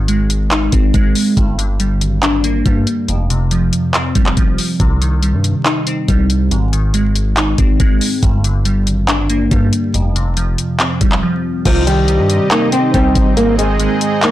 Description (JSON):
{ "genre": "hip hop, trap", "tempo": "140 BPM", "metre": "4/4", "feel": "half-time", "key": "C minor", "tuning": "A4 = 438 Hz", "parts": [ { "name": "glassy digital keys", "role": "accompaniment", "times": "0.0-14.3 s", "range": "F2 to Eb4", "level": "-17 LUFS", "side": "equal", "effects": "chorus, low-pass filter" }, { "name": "long sustained 808-style bass", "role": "bass", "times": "0.0-13.9 s", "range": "F1 to G2", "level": "-17 LUFS", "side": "equal", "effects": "none" }, { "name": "trap drum kit", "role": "drums", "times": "0.1-14.3 s", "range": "crash cymbal, handclaps, hi-hat, kick drum", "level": "-16 LUFS", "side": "equal", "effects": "soft clipping on snare" }, { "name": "flamenco guitar", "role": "melody", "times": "11.7-14.3 s", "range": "F3 to C4", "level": "-15 LUFS", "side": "equal", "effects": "low-pass filter, tape echo" }, { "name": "warm analog pad", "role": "sustained chords", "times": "11.7-14.3 s", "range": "C4 to Eb5", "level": "-21 LUFS", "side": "right 1 dB", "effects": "chorus, tremolo" } ], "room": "digital ambience", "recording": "blown-out, overdriven recording, vinyl crackle, overdrive", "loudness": "-12 LUFS", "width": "side -14 dB against mid", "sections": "0.0-11.7 A section; 11.7-14.3 B section", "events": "break 11.2-11.7", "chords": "0.0 Ab; 1.4 Gm; 3.1 Fsus2; 4.8 Cm; 6.5 Ab; 8.2 Gm; 9.9 Fsus2; 11.7 Cm; 13.4 Ab" }